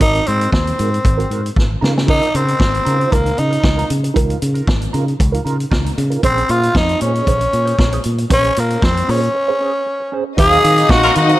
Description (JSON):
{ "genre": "disco", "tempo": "116 BPM", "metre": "4/4", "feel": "straight", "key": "unclear", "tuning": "A4 = 440 Hz", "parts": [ { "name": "growling tenor saxophone", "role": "melody", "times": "0.0-11.4 s", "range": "Bb3 to Ab4", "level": "-16 LUFS", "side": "equal", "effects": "none" }, { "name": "mellow electric guitar", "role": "accompaniment", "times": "0.0-11.4 s", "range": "C4 to Gb5", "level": "-24 LUFS", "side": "right 6 dB", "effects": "wah, tremolo" }, { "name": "fingered electric bass", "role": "bass", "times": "0.0-11.3 s", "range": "Ab1 to Eb3", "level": "-18 LUFS", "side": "equal", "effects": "none" }, { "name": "vintage drum kit", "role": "drums", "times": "0.0-11.4 s", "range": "hi-hat, kick drum, snare drum, splash cymbal", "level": "-18 LUFS", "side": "equal", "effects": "gated reverb" }, { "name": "warm studio string section", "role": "second line", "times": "10.4-11.4 s", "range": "Eb4 to Eb5", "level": "-19 LUFS", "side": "left 3 dB", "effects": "none" }, { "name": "mellow French horn section", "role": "sustained chords", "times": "10.4-11.4 s", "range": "Eb3 to F5", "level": "-22 LUFS", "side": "equal", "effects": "none" }, { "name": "clear horn section", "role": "stabs", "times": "11.0-11.1 s", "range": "Gb3 to Bb4", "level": "-18 LUFS", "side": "left 3 dB", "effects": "slapback echo" } ], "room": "light reverb, studio ambience", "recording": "none", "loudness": "-13 LUFS", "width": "side -16 dB against mid", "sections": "0.0-10.4 A section; 10.4-11.4 B section", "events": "drum fill 1.6-2.1; break 9.3-10.4", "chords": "0.0 Ab9; 1.8 Db69; 6.2 Bbm9; 10.4 Ebm69" }